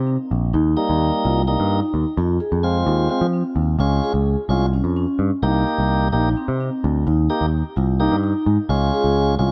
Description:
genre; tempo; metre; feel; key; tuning
progressive instrumental, progressive; 257 BPM (eighths); 7/8; straight; unclear; A4 = 441 Hz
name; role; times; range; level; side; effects
picked electric bass; bass; 0.0-9.5 s; Bb1 to F3; -22 LUFS; equal; none
vibraphone with soft mallets; arpeggios; 0.1-9.5 s; C4 to Ab4; -26 LUFS; equal; none
tonewheel organ; accompaniment; 0.8-9.5 s; G3 to G4; -26 LUFS; equal; stopped rotary speaker
room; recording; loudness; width
light reverb; dark, warm production; -20 LUFS; mono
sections
0.0-9.5 A section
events
none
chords
0.0 C7(no3); 0.5 Eb; 2.2 Fm; 3.8 Db; 5.4 Cm7; 7.1 Eb; 8.7 Db

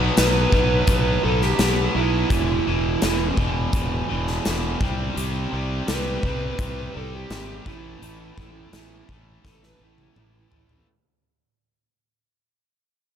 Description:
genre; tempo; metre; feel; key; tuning
classic rock; 84 BPM; 4/4; straight; unclear; A4 = 440 Hz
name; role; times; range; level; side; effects
overdriven electric guitar; riff; 0.0-10.9 s; E2 to C4; -29 LUFS; right 9 dB; none
raw garage guitar; riff; 0.0-10.9 s; E2 to C4; -29 LUFS; left 13 dB; overdrive
fuzz fingered electric bass; bass; 0.0-10.8 s; E1 to C2; -25 LUFS; equal; overdrive
fuzz lead guitar; melody; 0.2-10.9 s; E4 to B4; -26 LUFS; right 3 dB; distortion, slapback echo
big rock drum kit; drums; 0.2-10.9 s; hi-hat, kick drum, snare drum, toms; -25 LUFS; equal; none
room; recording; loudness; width
little or no reverb; none; -20 LUFS; side -9 dB against mid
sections
0.0-10.9 A section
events
fade-out 0.0-10.9; lead electric guitar solo 0.0-10.9; drum fill 9.5-10.9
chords
0.0 B5; 2.3 E5; 4.8 C5; 7.7 A5

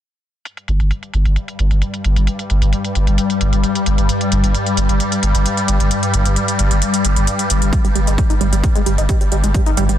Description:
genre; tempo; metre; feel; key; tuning
driving peak-time techno; 132 BPM; 4/4; straight; unclear; A4 = 440 Hz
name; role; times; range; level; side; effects
swarming drone; drone; 1.6-10.0 s; G2 to G3; -19 LUFS; left 2 dB; built-in reverb, sidechain pumping
electronic hi-hat; drums; 0.5-10.0 s; none; -24 LUFS; equal; overdrive, low-pass filter on hats
saturated sub bass; bass; 0.7-10.0 s; G1; -16 LUFS; equal; overdrive, sidechain pumping, low-pass filter
tight sequenced synth; riff; 7.7-9.9 s; G3 to Eb4; -21 LUFS; right 3 dB; chorus, sidechain pumping, ping-pong delay
electronic kick drum; drums; 7.7-9.6 s; none; -16 LUFS; equal; overdrive
room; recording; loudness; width
light reverb, digital ambience; dense, heavily limited modern master; -14 LUFS; side -11 dB against mid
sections
0.5-10.0 A section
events
none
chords
none

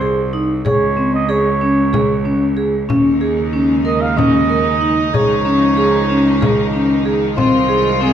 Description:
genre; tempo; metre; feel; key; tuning
contemporary instrumental, chamber music in an uneven meter; 187 BPM (eighths); 7/8; straight; unclear; A4 = 440 Hz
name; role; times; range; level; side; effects
warm flugelhorn; melody; 0.0-8.1 s; Ab4 to F5; -20 LUFS; right 3 dB; none
vibraphone with medium hard mallets; arpeggios; 0.0-8.1 s; C4 to Bb4; -16 LUFS; equal; none
clear cello; bass; 0.0-8.1 s; C2 to Eb2; -20 LUFS; right 3 dB; none
frame drum; percussion; 0.7-8.1 s; none; -22 LUFS; left 4 dB; none
rich studio string section; sustained chords; 2.9-8.1 s; Db3 to F4; -22 LUFS; left 3 dB; none
room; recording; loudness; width
moderate recital hall reverb, RT60 1.3 s; dark, warm production; -13 LUFS; side -9 dB against mid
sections
0.0-8.1 A section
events
none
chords
0.0 Ab/C; 0.7 Db5; 2.9 Eb7sus4; 5.1 Dbadd9; 7.4 Ab6/C

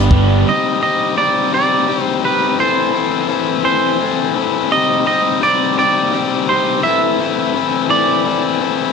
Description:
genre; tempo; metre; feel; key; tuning
rock; 56 BPM (dotted quarters); 6/8; straight; unclear; A4 = 439 Hz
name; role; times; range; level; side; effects
crunchy overdriven guitar; riff; 0.0-0.5 s; D3 to D4; -18 LUFS; right 14 dB; lush chorus, slapback echo
overdriven electric guitar; riff; 0.0-8.9 s; E3 to A4; -16 LUFS; left 8 dB; none
twangy electric guitar; melody; 0.5-8.7 s; B4 to E5; -16 LUFS; right 4 dB; slapback echo
room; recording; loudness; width
small room reverb; dark, warm production; -13 LUFS; side -5 dB against mid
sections
0.5-8.9 A section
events
none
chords
0.5 Cmadd9; 2.6 Am; 4.7 Cmadd9; 6.8 Am

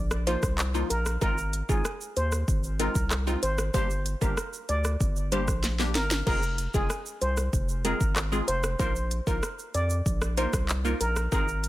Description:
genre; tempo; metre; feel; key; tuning
dancehall; 95 BPM; 4/4; straight; unclear; A4 = 439 Hz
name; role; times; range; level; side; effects
saturated sub bass; bass; 0.0-11.7 s; F1 to F2; -29 LUFS; equal; none
afro-pop drum kit; drums; 0.1-11.7 s; crash cymbal, handclaps, hi-hat, kick drum, rim click, shaker, snare drum; -29 LUFS; equal; none
steel pan; melody; 0.3-11.4 s; Ab4 to D5; -31 LUFS; equal; digital delay
wavetable chord stab; accompaniment; 0.3-11.5 s; F3 to Bb4; -33 LUFS; left 1 dB; phaser, sidechain pumping
room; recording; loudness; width
digital ambience; none; -25 LUFS; side -16 dB against mid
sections
0.0-11.7 A section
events
drum fill 5.6-6.3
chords
0.0 Bbsus4; 1.2 Ab6; 3.7 Gm; 6.3 Fm; 8.8 Bbsus4

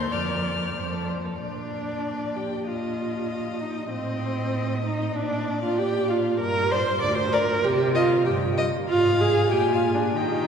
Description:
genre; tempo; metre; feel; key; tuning
quick classical-period movement for string quartet; 96 BPM; 2/4; straight; Bb major; A4 = 440 Hz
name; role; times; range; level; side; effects
warm violin; melody; 0.0-10.5 s; C5 to F6; -35 LUFS; left 6 dB; none
warm violin; second line; 0.0-10.5 s; A4 to Ab5; -31 LUFS; left 3 dB; none
dark viola; accompaniment; 0.0-10.5 s; C4 to D5; -24 LUFS; right 2 dB; none
rich cello; bass; 0.0-10.5 s; D2 to Eb3; -29 LUFS; right 1 dB; none
room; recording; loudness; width
wet cathedral reverb, RT60 6.9 s; recorded in a church or concert hall; -22 LUFS; side -7 dB against mid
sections
0.0-1.4 A section; 1.4-10.5 B section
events
none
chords
0.1 Bb/F; 1.4 Bb; 2.7 Bbsus4; 3.9 Adim; 5.2 Bb; 6.4 G5; 7.6 Cm; 8.9 Fm/Ab; 9.5 Bb7

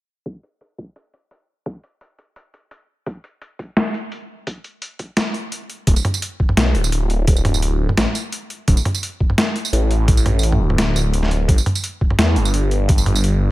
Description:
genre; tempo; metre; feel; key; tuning
half-time drum and bass; 171 BPM; 4/4; half-time; unclear; A4 = 439 Hz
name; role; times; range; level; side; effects
boom bap sampler-style drum kit; drums; 0.3-13.3 s; hi-hat, snare drum, tambourine, toms; -20 LUFS; equal; overdrive, low-pass filter on hats, low-pass filter on snare, low-pass filter on perc, low-pass filter on toms
electronic kick drum; drums; 0.3-13.0 s; none; -16 LUFS; equal; overdrive, high-pass filter on kick
phased detuned saw bass; bass; 5.9-13.5 s; D1 to E2; -17 LUFS; equal; phaser
room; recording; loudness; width
digital ambience; low-pass filter; -16 LUFS; side -17 dB against mid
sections
0.3-5.9 A section; 5.9-13.5 B section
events
filter sweep on drum 0.3-5.9; filter sweep 0.3-5.9; drop 5.9-13.5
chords
none

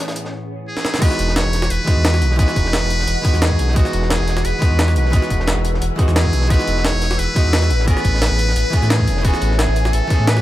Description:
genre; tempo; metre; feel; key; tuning
liquid drum and bass; 175 BPM; 4/4; straight; E major; A4 = 440 Hz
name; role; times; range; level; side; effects
archtop guitar, miked and amplified; accompaniment; 0.0-10.4 s; E3 to G#4; -23 LUFS; equal; none
ethereal airy pad; sustained chords; 0.0-10.4 s; A2 to E6; -29 LUFS; left 2 dB; ensemble chorus, built-in reverb, sidechain pumping
crunchy breakbeat drum kit; drums; 0.0-10.4 s; hi-hat, snare drum; -30 LUFS; equal; none
jungle sampler-style drum kit; drums; 0.2-10.4 s; crash cymbal, hi-hat, snare drum; -23 LUFS; equal; overdrive
trumpet with metal mute; melody; 0.7-10.4 s; F#4 to C#5; -23 LUFS; equal; digital delay
electronic kick drum; drums; 1.0-10.2 s; none; -17 LUFS; equal; none
sub bass with octave; bass; 1.2-10.4 s; E1 to A2; -18 LUFS; equal; none
room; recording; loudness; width
little or no reverb; none; -14 LUFS; side -14 dB against mid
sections
0.0-1.0 A section; 1.0-10.4 B section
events
drum fill 0.8; drop 1.0-10.4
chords
0.0 Amaj9; 1.0 Emaj9; 7.7 Amaj9

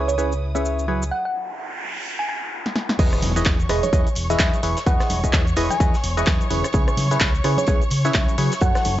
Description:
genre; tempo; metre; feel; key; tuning
piano house; 128 BPM; 4/4; swing 59% on 16ths; E major; A4 = 440 Hz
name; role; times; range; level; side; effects
warm symphonic violin section; sustained chords; 0.0-9.0 s; E4 to D#6; -32 LUFS; equal; sidechain pumping
percussive organ stab; riff; 0.0-9.0 s; C#3 to D#5; -25 LUFS; right 1 dB; chorus, phaser, vintage 12-bit sampler grit, sidechain pumping
fingered electric bass; bass; 0.0-9.0 s; E1 to C#3; -24 LUFS; equal; sidechain pumping, low-pass filter
thumb-piano-like synth pluck; melody; 0.1-8.8 s; C#5 to G#5; -27 LUFS; equal; chorus, tape echo
punchy analog drum machine; drums; 0.1-9.0 s; cabasa, crash cymbal, handclaps, hi-hat, rim click, snare drum; -26 LUFS; equal; none
noise sweep and impact; sound effects; 1.3-4.9 s; none; -30 LUFS; equal; none
electronic kick drum; drums; 3.0-8.7 s; none; -20 LUFS; equal; overdrive
tight funk drum kit; drums; 3.0-9.0 s; hi-hat, snare drum; -38 LUFS; right 1 dB; none
tambourine and congas; percussion; 3.0-9.0 s; none; -33 LUFS; right 1 dB; none
room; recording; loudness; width
small room ambience; dry, gritty hardware recording, transformer saturation, nothing above 7.9 kHz; -18 LUFS; side -13 dB against mid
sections
0.0-3.0 A section; 3.0-9.0 B section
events
break 1.1-3.0; noise sweep 1.3-3.0; drum fill 2.6-3.0; drop 3.0-9.0; impact 3.0-4.9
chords
0.0 C#m7; 1.1 N.C.; 3.0 Emaj7; 6.7 C#m7

